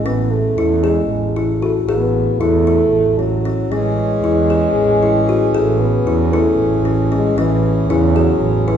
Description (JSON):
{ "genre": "contemporary instrumental, chamber music in an uneven meter", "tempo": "230 BPM (eighths)", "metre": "7/8", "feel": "straight", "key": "A major", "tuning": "A4 = 440 Hz", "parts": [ { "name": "mellow French horn", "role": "second line", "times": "0.0-8.8 s", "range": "C#3 to B3", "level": "-18 LUFS", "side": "left 1 dB", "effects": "none" }, { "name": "kalimba", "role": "arpeggios", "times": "0.1-8.8 s", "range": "C#4 to G#4", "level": "-18 LUFS", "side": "left 4 dB", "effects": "none" }, { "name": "warm double bass", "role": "bass", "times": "0.1-8.8 s", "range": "A1 to E2", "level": "-18 LUFS", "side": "right 5 dB", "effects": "none" }, { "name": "pedal harmonium", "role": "sustained chords", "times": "3.7-8.8 s", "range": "E3 to G#4", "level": "-22 LUFS", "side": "right 2 dB", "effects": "none" } ], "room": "wet recital hall reverb, RT60 1.6 s", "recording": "recorded in a church or concert hall", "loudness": "-13 LUFS", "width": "side -8 dB against mid", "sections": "0.0-8.8 A section", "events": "none", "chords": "0.0 Amaj7" }